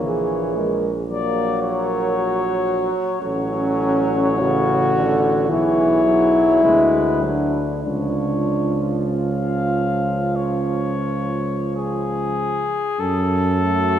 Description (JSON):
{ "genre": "classical, hymn-like piece for brass band", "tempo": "41-58 BPM", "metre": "4/4", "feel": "rubato", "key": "F# minor from 3.2 s", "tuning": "A4 = 440 Hz", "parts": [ { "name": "mellow cornet", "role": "melody", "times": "0.0-14.0 s", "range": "G#4 to E#5", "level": "-25 LUFS", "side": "left 4 dB", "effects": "none" }, { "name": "warm French horn section", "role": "second line", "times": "0.0-14.0 s", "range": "E#4 to A#4", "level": "-26 LUFS", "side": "right 4 dB", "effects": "none" }, { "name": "bright trombone", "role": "accompaniment", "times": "0.0-14.0 s", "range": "C#3 to A3", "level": "-26 LUFS", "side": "right 2 dB", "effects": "none" }, { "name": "warm euphonium", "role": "accompaniment", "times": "0.0-11.7 s", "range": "G#3 to F#4", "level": "-20 LUFS", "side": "left 1 dB", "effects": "none" }, { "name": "warm tuba", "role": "bass", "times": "0.0-14.0 s", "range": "A1 to F#2", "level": "-24 LUFS", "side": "equal", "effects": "none" } ], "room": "wet church reverb, RT60 2.7 s", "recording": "heard from further back in the room", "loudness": "-17 LUFS", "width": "side -10 dB against mid", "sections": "0.0-13.0 A section; 13.0-14.0 B section", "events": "none", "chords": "0.0 F#7/A#; 3.2 F#m/A; 5.5 Bm; 7.8 C#; 13.0 F#m" }